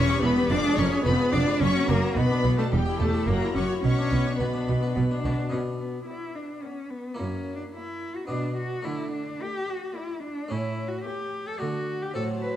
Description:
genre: classical, baroque-style concerto movement with solo episodes.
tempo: 108 BPM.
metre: 3/4.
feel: straight.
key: B minor.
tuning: A4 = 442 Hz.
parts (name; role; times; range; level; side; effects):
clear chamber violin section; melody; 0.0-12.6 s; F#5 to D6; -36 LUFS; left 4 dB; none.
rich cello; melody; 0.0-12.6 s; G3 to B4; -28 LUFS; left 1 dB; none.
rich chamber violin section; second line; 0.0-12.6 s; G4 to E5; -34 LUFS; left 3 dB; none.
harpsichord; accompaniment; 0.0-12.6 s; E2 to Cb5; -32 LUFS; equal; none.
rich chamber viola section; accompaniment; 0.0-12.6 s; E3 to G4; -35 LUFS; left 1 dB; none.
clear chamber cello section; bass; 0.0-12.6 s; E2 to D3; -30 LUFS; right 2 dB; none.
rich chamber double bass section; bass; 0.2-5.3 s; E1 to B1; -27 LUFS; right 2 dB; none.
room: moderate recital hall reverb, RT60 1.5 s.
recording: dark, warm production.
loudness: -24 LUFS.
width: side -11 dB against mid.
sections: 0.0-5.5 A section; 5.5-12.6 B section.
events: none.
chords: 0.0 Em; 0.5 Fdim; 1.6 F#; 2.2 Bm; 2.7 Em; 3.3 F#7; 3.8 Bm; 7.2 F#7; 8.3 Bm; 8.9 D; 10.5 A7; 11.6 D.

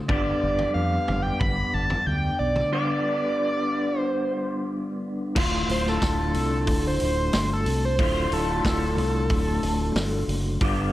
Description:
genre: psychedelic rock.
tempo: 91 BPM.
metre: 4/4.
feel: straight.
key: D dorian.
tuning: A4 = 440 Hz.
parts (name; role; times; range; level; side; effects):
electric guitar through a small old amp; riff; 0.0-10.9 s; D2 to G4; -27 LUFS; left 1 dB; rotary speaker.
overdriven synth lead; melody; 0.1-10.2 s; A4 to B5; -27 LUFS; right 1 dB; distortion, slapback echo.
fingered electric bass; bass; 0.1-10.9 s; D1 to F2; -27 LUFS; equal; none.
vintage drum kit; drums; 0.1-10.8 s; crash cymbal, hi-hat, kick drum, snare drum, toms; -28 LUFS; equal; none.
room: light reverb.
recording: none.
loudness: -22 LUFS.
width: side -15 dB against mid.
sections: 0.0-5.4 A section; 5.4-10.9 B section.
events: break 2.7-5.4; analog synth lead solo 5.4-10.9.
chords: 0.1 G; 5.4 Dm.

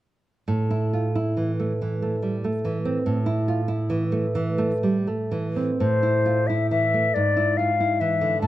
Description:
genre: romantic duo for flute and classical guitar.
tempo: 39-48 BPM (dotted quarters).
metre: 6/8.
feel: rubato.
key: A minor.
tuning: A4 = 440 Hz.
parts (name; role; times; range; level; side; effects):
nylon-string guitar; accompaniment; 0.5-8.5 s; G#2 to F4; -22 LUFS; right 2 dB; none.
concert flute; melody; 5.8-8.5 s; C5 to A5; -22 LUFS; left 4 dB; none.
room: light reverb.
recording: close, detailed microphones.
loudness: -21 LUFS.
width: side -14 dB against mid.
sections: 0.5-5.8 A section; 5.8-8.5 B section.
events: none.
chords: 0.5 A5; 5.8 Am; 7.1 E7/G#.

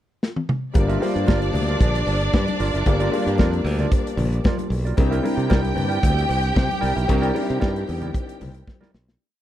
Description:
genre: disco.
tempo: 114 BPM.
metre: 4/4.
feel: straight.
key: G dorian.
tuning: A4 = 440 Hz.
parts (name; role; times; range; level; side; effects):
modern studio drum kit; drums; 0.2-9.2 s; hi-hat, kick drum, snare drum, toms; -20 LUFS; equal; none.
warm symphonic violin section; second line; 0.7-8.9 s; D4 to G5; -27 LUFS; right 1 dB; none.
mellow electric guitar; accompaniment; 0.7-9.1 s; E4 to E5; -30 LUFS; right 7 dB; none.
warm concert grand piano; accompaniment; 0.7-9.2 s; G3 to C5; -26 LUFS; left 4 dB; none.
congas; percussion; 0.7-8.9 s; none; -32 LUFS; left 4 dB; none.
cowbell; percussion; 0.7-8.8 s; none; -39 LUFS; left 7 dB; none.
modern bright fingered electric bass; bass; 0.8-9.1 s; F#1 to C3; -23 LUFS; equal; none.
room: small room ambience.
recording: dry, close 1970s-style studio recording.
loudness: -19 LUFS.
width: side -12 dB against mid.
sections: 0.0-0.8 pickup bar; 0.8-9.2 groove.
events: drum fill 0.2-0.8, 8.7-9.2; fade-out 7.1-9.2.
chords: 0.0 N.C.; 0.8 Gm7; 5.0 C9.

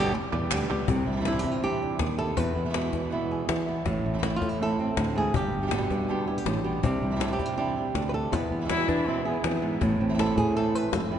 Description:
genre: flamenco.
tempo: 161 BPM.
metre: 4/4.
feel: straight.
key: unclear.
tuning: A4 = 440 Hz.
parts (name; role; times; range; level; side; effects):
flamenco guitar; melody; 0.0-11.2 s; E2 to B4; -28 LUFS; right 1 dB; none.
sustaining fretless electric bass; bass; 0.0-11.2 s; F1 to E3; -30 LUFS; equal; none.
palmas hand claps; percussion; 0.3-0.9 s; none; -38 LUFS; right 5 dB; none.
cajon; percussion; 0.5-11.2 s; none; -33 LUFS; left 4 dB; none.
flamenco guitar; stabs; 0.9-11.2 s; B2 to G4; -33 LUFS; right 4 dB; none.
rich cello; second line; 8.7-10.1 s; B3 to E4; -32 LUFS; left 3 dB; none.
room: wet cathedral reverb, RT60 5.0 s.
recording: recorded in a church or concert hall, nothing above 10.4 kHz.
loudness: -24 LUFS.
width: side -9 dB against mid.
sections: 0.9-11.2 A section.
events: none.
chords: 0.0 G; 0.9 Cadd9; 2.4 E; 3.9 Am; 5.3 G; 6.8 Cadd9; 8.3 E; 9.8 Am.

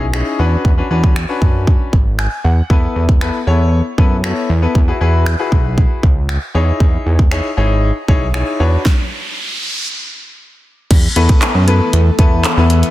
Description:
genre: dance-pop.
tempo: 117 BPM.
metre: 4/4.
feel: straight.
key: unclear.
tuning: A4 = 440 Hz.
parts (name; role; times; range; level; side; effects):
clear concert grand piano; accompaniment; 0.0-12.9 s; A3 to G#5; -19 LUFS; left 3 dB; sidechain pumping.
fat analog bass; bass; 0.0-12.8 s; G#1 to F#2; -14 LUFS; equal; sidechain pumping.
pop drum kit; drums; 0.1-12.9 s; crash cymbal, finger snaps, handclaps, hi-hat, kick drum, snare drum; -14 LUFS; equal; soft clipping on snare.
riser; sound effects; 8.3-9.9 s; none; -24 LUFS; right 2 dB; none.
glassy FM pad; sustained chords; 11.1-12.9 s; E3 to A4; -22 LUFS; left 2 dB; ensemble chorus, built-in reverb, sidechain pumping.
room: little or no reverb.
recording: dense, heavily limited modern master.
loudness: -12 LUFS.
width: side -16 dB against mid.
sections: 0.0-10.9 A section; 10.9-12.9 B section.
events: grand piano fill 1.9-2.7; riser 8.3-10.9; stop 8.9-10.9.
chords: 0.4 Bmadd9/E; 2.7 Asus2/E; 4.8 Eadd9; 6.5 C#madd9/E; 8.6 Bmadd9/E; 10.9 Asus2/E.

